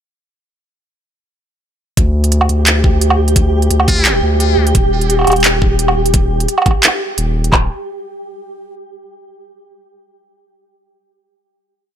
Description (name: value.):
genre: half-time drum and bass.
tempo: 173 BPM.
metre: 4/4.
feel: half-time.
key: D phrygian.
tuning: A4 = 442 Hz.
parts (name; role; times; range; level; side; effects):
saturated sub bass; bass; 2.0-7.7 s; D1 to D2; -14 LUFS; equal; none.
drum and bass drum kit; drums; 2.0-7.6 s; handclaps, kick drum; -13 LUFS; equal; none.
organic electronic drum kit; drums; 2.0-7.5 s; handclaps, hi-hat, woodblock; -14 LUFS; right 2 dB; overdrive.
flickering grainy texture; texture; 2.5-7.5 s; G4; -19 LUFS; right 1 dB; built-in reverb.
trumpet with metal mute; melody; 3.9-4.1 s; F4; -21 LUFS; left 2 dB; vintage 12-bit sampler grit, ping-pong delay.
room: little or no reverb.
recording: none.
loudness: -11 LUFS.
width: side -9 dB against mid.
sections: 2.0-7.5 drop; 7.5-8.9 final note.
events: drop 2.0-7.5.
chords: 2.0 Dsus4; 4.7 Eb; 7.5 N.C..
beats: | 1.97 2.32 2.67 3.01 | 3.36 3.71 4.05 4.40 | 4.75 5.09 5.44 5.79 | 6.13 6.48 6.83 7.18 | 7.52.